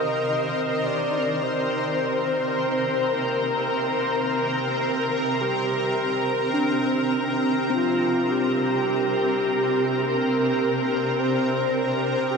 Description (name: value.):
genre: ambient.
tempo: 53 BPM.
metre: 4/4.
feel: straight.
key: C minor.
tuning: A4 = 439 Hz.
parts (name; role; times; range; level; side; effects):
breathy flute-like synth lead; melody; 0.0-12.4 s; F4 to Eb5; -26 LUFS; equal; wide subtle chorus, shimmer reverb, ping-pong delay.
shimmering ambient pad; sustained chords; 0.0-12.4 s; C3 to G5; -24 LUFS; equal; chorus, built-in reverb, shimmer reverb.
muted felt-like synth keys; arpeggios; 0.0-12.4 s; C4 to C6; -30 LUFS; left 2 dB; chorus, shimmer reverb, ping-pong delay.
rich chamber violin section; texture; 0.0-12.4 s; Bb4 to Bb5; -36 LUFS; left 2 dB; shimmer reverb.
room: wet huge ambient reverb, RT60 7.0 s.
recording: none.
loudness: -21 LUFS.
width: side -5 dB against mid.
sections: 0.0-12.4 A section.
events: fade-in on violin section 0.0-12.4.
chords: 0.0 Cm9; 7.7 Gm/C.